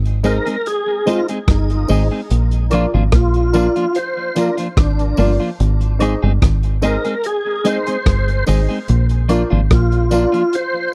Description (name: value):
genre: roots reggae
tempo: 73 BPM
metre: 4/4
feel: straight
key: Ab lydian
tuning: A4 = 439 Hz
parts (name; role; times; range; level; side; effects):
- deep dub fingered electric bass; bass; 0.0-10.3 s; G1 to Bb1; -18 LUFS; equal; none
- crunchy breakbeat drum kit; drums; 0.1-10.7 s; hi-hat, kick drum, rim click; -20 LUFS; equal; none
- clean electric guitar; accompaniment; 0.2-10.4 s; F3 to Ab4; -24 LUFS; equal; tape echo
- dark upright piano; stabs; 0.2-10.3 s; D4 to Eb5; -24 LUFS; equal; none
- tambourine and woodblock; percussion; 0.2-10.3 s; none; -35 LUFS; equal; none
- tonewheel organ; melody; 0.3-10.9 s; D4 to C5; -23 LUFS; equal; overdrive, chorus vibrato, slow rotary speaker, tape echo
room: small room ambience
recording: dry, close 1970s-style studio recording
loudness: -16 LUFS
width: mono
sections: 0.0-10.9 A section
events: none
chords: 0.0 Ab; 2.3 Bb; 5.6 Ab; 8.9 Bb